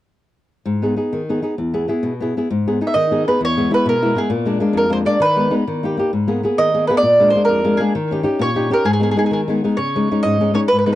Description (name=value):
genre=italian folk, Italian serenade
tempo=131 BPM (dotted quarters)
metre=6/8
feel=straight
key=G# harmonic minor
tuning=A4 = 440 Hz
part: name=flamenco guitar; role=accompaniment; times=0.7-10.9 s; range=E2 to G#4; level=-18 LUFS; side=left 2 dB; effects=none
part: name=mandolin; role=melody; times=2.9-10.9 s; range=G#4 to E5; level=-17 LUFS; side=right 2 dB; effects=tape echo
room=light reverb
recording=dry, close 1970s-style studio recording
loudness=-15 LUFS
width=side -14 dB against mid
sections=0.7-2.5 A section; 2.5-10.9 B section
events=none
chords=0.7 G#m; 1.6 E; 2.5 G#m; 3.4 E; 4.3 A#7; 5.2 G#m/D#; 5.7 D#; 6.1 G#madd9; 7.0 A#7; 8.0 D#7; 8.9 G#m; 9.8 C#sus2